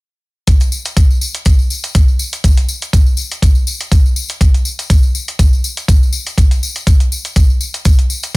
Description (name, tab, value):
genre	nu-disco, nu disco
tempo	122 BPM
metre	4/4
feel	swing 55% on 16ths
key	none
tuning	none
part	electronic hi-hat	drums	0.5-8.4 s	none	-23 LUFS	right 1 dB	none
part	electronic kick drum	drums	0.5-8.4 s	none	-10 LUFS	equal	none
part	tambourine	percussion	0.5-8.4 s	none	-23 LUFS	left 3 dB	none
room	little or no reverb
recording	none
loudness	-11 LUFS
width	side -24 dB against mid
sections	0.5-8.4 A section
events	none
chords	none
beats	| 0.47 0.97 1.46 1.95 | 2.44 2.93 3.42 3.92 | 4.41 4.90 5.39 5.88 | 6.38 6.87 7.36 7.85 | 8.34